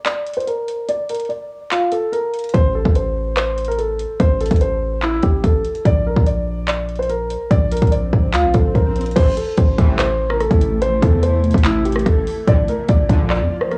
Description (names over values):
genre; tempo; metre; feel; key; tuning
hip hop, trap; 145 BPM; 4/4; half-time; A phrygian; A4 = 440 Hz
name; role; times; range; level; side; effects
dark concert grand piano; melody; 0.0-13.8 s; E4 to D5; -23 LUFS; equal; low-pass filter, cassette tape, tape echo
trap drum kit; drums; 0.1-13.8 s; crash cymbal, handclaps, hi-hat, kick drum, rim click; -20 LUFS; equal; vintage 12-bit sampler grit, cassette tape
hard-hitting 808-style bass; bass; 2.5-13.5 s; A1 to F2; -22 LUFS; equal; none
swell; sound effects; 8.0-9.2 s; none; -33 LUFS; equal; none
granular cloud pad; sustained chords; 10.2-13.8 s; C3 to F4; -28 LUFS; equal; built-in reverb, cassette tape
analog synth brass; stabs; 9.2-13.4 s; Bb1 to E3; -26 LUFS; equal; chorus, cassette tape
room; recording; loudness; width
digital ambience; home recording on cassette, small room ambience; -18 LUFS; mono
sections
0.0-9.2 A section; 9.2-13.8 B section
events
break 0.0-2.5; filter sweep on grand piano 0.0-2.5; swell 8.0-9.2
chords
0.0 N.C.; 2.5 Am; 5.9 Bb; 9.2 Am; 12.5 Bb